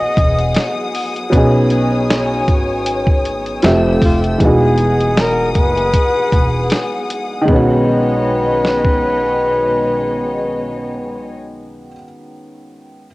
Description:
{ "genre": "lo-fi hip hop", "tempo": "78 BPM", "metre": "4/4", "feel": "swing 55% on 16ths", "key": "B major", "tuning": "A4 = 435 Hz", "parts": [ { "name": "breathy flugelhorn", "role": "melody", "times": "0.0-11.3 s", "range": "F4 to D#5", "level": "-18 LUFS", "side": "left 1 dB", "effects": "cassette tape" }, { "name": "dark upright piano", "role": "accompaniment", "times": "0.0-13.1 s", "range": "D#3 to E5", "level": "-18 LUFS", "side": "equal", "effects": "cassette tape" }, { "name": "warm studio string section", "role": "sustained chords", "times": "0.0-11.3 s", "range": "B2 to E6", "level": "-23 LUFS", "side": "left 2 dB", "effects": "cassette tape" }, { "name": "upright bass", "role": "bass", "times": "0.0-11.9 s", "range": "E1 to B1", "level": "-20 LUFS", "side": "equal", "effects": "none" }, { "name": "lo-fi sampler-style drum kit", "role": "drums", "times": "0.2-9.0 s", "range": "hi-hat, kick drum, snare drum", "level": "-16 LUFS", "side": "equal", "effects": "cassette tape" } ], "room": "light reverb, small room reverb", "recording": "home recording on cassette", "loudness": "-13 LUFS", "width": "side -20 dB against mid", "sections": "0.0-7.5 A section; 7.5-10.6 B section", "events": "none", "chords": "0.0 Emaj9; 1.3 B69; 3.6 Fmaj9; 4.4 Emaj9; 7.5 B69" }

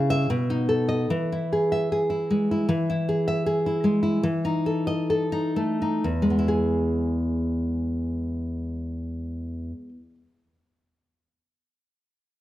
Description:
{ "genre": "romantic piece for solo classical guitar", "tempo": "60-81 BPM", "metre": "2/4", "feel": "rubato", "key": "E major", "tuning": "A4 = 440 Hz", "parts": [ { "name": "nylon-string guitar", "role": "solo", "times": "0.0-10.1 s", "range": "E2 to E5", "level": "-23 LUFS", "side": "equal", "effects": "none" } ], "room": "moderate recital hall reverb, RT60 1.5 s", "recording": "none", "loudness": "-22 LUFS", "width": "side -14 dB against mid", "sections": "0.0-2.7 A section; 2.7-6.0 B section; 6.0-9.7 C section", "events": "slowing down 1.9-6.0", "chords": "0.3 B7; 1.1 E; 4.2 Esus4; 6.0 E" }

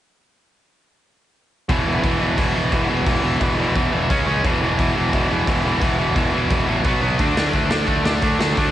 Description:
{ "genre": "punk rock", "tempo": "174 BPM", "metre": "4/4", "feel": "straight", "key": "unclear", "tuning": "A4 = 441 Hz", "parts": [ { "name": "distorted electric guitar", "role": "riff", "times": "1.7-8.7 s", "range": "E2 to D4", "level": "-22 LUFS", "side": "right 6 dB", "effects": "overdrive, cassette tape" }, { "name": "tight distorted guitar", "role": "riff", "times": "1.7-8.7 s", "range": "E2 to D4", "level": "-22 LUFS", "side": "left 8 dB", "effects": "distortion, cassette tape" }, { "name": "fuzz picked electric bass", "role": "bass", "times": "1.7-8.7 s", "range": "E1 to D2", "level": "-24 LUFS", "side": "equal", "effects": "overdrive" }, { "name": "raw garage drum kit", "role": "drums", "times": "1.7-8.7 s", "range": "hi-hat, kick drum, snare drum", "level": "-23 LUFS", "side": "equal", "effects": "cassette tape" } ], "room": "small room ambience", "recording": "home recording on cassette, nothing above 10.5 kHz", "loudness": "-17 LUFS", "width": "side -12 dB against mid", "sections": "1.7-8.7 A section", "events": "none", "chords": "1.7 E5; 4.1 C#5; 4.4 E5; 6.9 B5; 7.2 D5" }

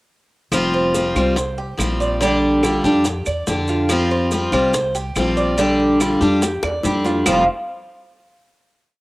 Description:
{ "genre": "latin, Cuban son and guajira", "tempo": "142 BPM", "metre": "4/4", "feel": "straight", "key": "unclear", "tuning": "A4 = 440 Hz", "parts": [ { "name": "picked steel-string acoustic guitar", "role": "accompaniment", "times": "0.5-7.4 s", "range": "F2 to G4", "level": "-17 LUFS", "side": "left 1 dB", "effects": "cassette tape" }, { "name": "upright bass", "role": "bass", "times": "0.5-7.5 s", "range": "F1 to F2", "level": "-25 LUFS", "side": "equal", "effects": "none" }, { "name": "bongos", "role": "percussion", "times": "0.5-7.4 s", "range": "none", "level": "-29 LUFS", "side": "left 3 dB", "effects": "none" }, { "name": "claves", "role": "percussion", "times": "0.5-7.4 s", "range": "none", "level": "-27 LUFS", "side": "right 3 dB", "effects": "none" }, { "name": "maracas", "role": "percussion", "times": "0.5-7.4 s", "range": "none", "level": "-30 LUFS", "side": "right 2 dB", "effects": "none" }, { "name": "Cuban tres", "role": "arpeggios", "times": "0.7-7.5 s", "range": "D4 to F5", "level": "-23 LUFS", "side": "right 2 dB", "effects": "cassette tape" } ], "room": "moderate spring reverb, RT60 1.5 s", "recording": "home recording on cassette", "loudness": "-16 LUFS", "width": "side -20 dB against mid", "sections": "0.5-7.3 montuno (vamp); 7.3-8.9 final chord", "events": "drum fill 6.6-7.3", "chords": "0.5 Fsus2; 2.2 Bb6; 3.9 Fsus2; 5.6 Bb6; 7.3 F5" }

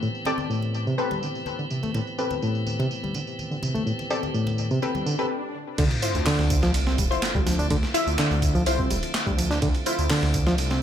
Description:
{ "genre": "breakbeat, breaks", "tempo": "125 BPM", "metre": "4/4", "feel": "straight", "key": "D dorian", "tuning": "A4 = 440 Hz", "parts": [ { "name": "tonewheel organ", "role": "sustained chords", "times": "0.0-10.8 s", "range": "A2 to G4", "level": "-34 LUFS", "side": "right 1 dB", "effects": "slow rotary speaker, sidechain pumping" }, { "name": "barky reed electric piano", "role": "riff", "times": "0.0-10.8 s", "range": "A2 to D4", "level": "-26 LUFS", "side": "equal", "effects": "vintage 12-bit sampler grit, low-pass filter, ping-pong delay" }, { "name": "electronic tambourine and handclaps", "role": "drums", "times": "0.0-10.8 s", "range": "none", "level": "-34 LUFS", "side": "right 2 dB", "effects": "low-pass filter on perc, small room ambience, low-pass filter on snare, low-pass filter on room" }, { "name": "orchestra-hit-like synth stab", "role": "stabs", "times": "0.3-10.0 s", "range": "C4 to E5", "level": "-29 LUFS", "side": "left 2 dB", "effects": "built-in reverb, ping-pong delay" }, { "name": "congas", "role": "percussion", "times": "0.3-5.0 s", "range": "none", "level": "-37 LUFS", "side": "left 2 dB", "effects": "none" }, { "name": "swell and sub drop", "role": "sound effects", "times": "5.0-7.7 s", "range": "none", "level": "-33 LUFS", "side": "equal", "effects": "none" }, { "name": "phased detuned saw bass", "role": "bass", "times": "5.8-10.8 s", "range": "D1 to D2", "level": "-26 LUFS", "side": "equal", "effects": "phaser" }, { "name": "breakbeat sampler-style drum kit", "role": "drums", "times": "5.8-10.8 s", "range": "crash cymbal, hi-hat, kick drum, ride cymbal, snare drum", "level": "-27 LUFS", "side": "equal", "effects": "small room ambience" } ], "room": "digital ambience", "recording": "none", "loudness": "-22 LUFS", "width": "side -9 dB against mid", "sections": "0.0-5.8 A section; 5.8-10.8 B section", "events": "swell 5.0-5.8; break 5.3-5.8; drop 5.8-10.8; impact 5.8-7.7", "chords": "0.0 Am9; 5.8 Dm9" }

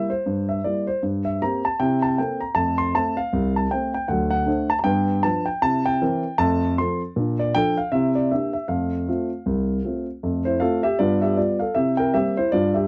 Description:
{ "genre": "jazz, stride piano", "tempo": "156 BPM", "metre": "4/4", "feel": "swing 60% on 8ths", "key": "F major", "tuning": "A4 = 443 Hz", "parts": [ { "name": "dark concert grand piano", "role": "solo", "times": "0.0-12.9 s", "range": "C2 to C6", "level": "-22 LUFS", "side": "equal", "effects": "none" } ], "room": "light reverb", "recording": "dry, close 1970s-style studio recording", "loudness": "-22 LUFS", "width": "mono", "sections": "0.0-10.2 A section; 10.2-12.9 A section", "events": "none", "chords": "0.0 C7; 1.0 C5/G; 1.8 C6; 2.6 F; 4.1 D7; 4.9 G7; 5.6 C7; 6.4 F; 7.2 Bbmaj7; 7.9 C9; 8.7 F; 11.0 G7; 11.8 C7" }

